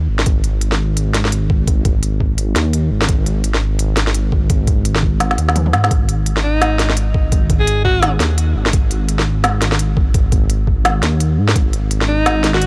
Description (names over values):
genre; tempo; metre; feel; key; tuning
half-time drum and bass; 170 BPM; 4/4; swing 59% on 16ths, half-time; unclear; A4 = 440 Hz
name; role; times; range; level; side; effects
dark detuned saw bass; bass; 0.0-12.7 s; G#1 to G#2; -19 LUFS; equal; tube saturation
organic electronic drum kit; drums; 0.2-12.7 s; hi-hat, snare drum, toms; -21 LUFS; equal; none
electronic kick drum; drums; 0.3-11.6 s; none; -18 LUFS; equal; overdrive
bright alto saxophone; melody; 6.4-8.1, 12.1-12.7 s; D#4 to G#4; -23 LUFS; equal; analog delay
room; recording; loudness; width
little or no reverb; dry, gritty hardware recording; -16 LUFS; mono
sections
0.0-12.7 A section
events
drum fill 5.2-5.9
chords
0.0 G#5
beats
| 0.26 0.62 0.97 1.32 | 1.68 2.03 2.38 2.73 | 3.09 3.44 3.79 4.15 | 4.50 4.85 5.20 5.56 | 5.91 6.26 6.62 6.97 | 7.32 7.67 8.03 8.38 | 8.73 9.09 9.44 9.79 | 10.15 10.50 10.85 11.20 | 11.56 11.91 12.26 12.62